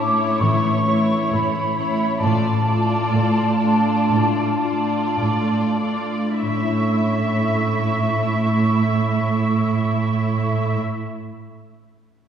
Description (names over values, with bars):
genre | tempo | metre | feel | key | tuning
classical, slow romantic movement for symphony orchestra | 45-67 BPM | 4/4 | rubato | A major | A4 = 440 Hz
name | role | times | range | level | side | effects
muted studio violin section | melody | 0.0-10.8 s | C#5 to E5 | -28 LUFS | left 2 dB | none
flute section | second line | 0.0-10.8 s | A5 to D6 | -24 LUFS | right 1 dB | none
muted studio violin section | second line | 0.0-10.8 s | E4 to F4 | -30 LUFS | left 2 dB | none
muted studio viola section | accompaniment | 0.0-10.8 s | A3 | -23 LUFS | right 2 dB | none
concert harp | arpeggios | 0.0-11.1 s | A2 to E5 | -26 LUFS | left 6 dB | none
muted studio cello section | bass | 0.0-10.8 s | A2 | -23 LUFS | right 3 dB | none
room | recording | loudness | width
wet scoring stage reverb, RT60 1.8 s | heard from further back in the room | -17 LUFS | side -8 dB against mid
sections
0.0-6.4 A section; 6.4-10.6 B section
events
slowing down 0.0-6.4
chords
0.0 A; 2.2 Dm/A; 6.4 A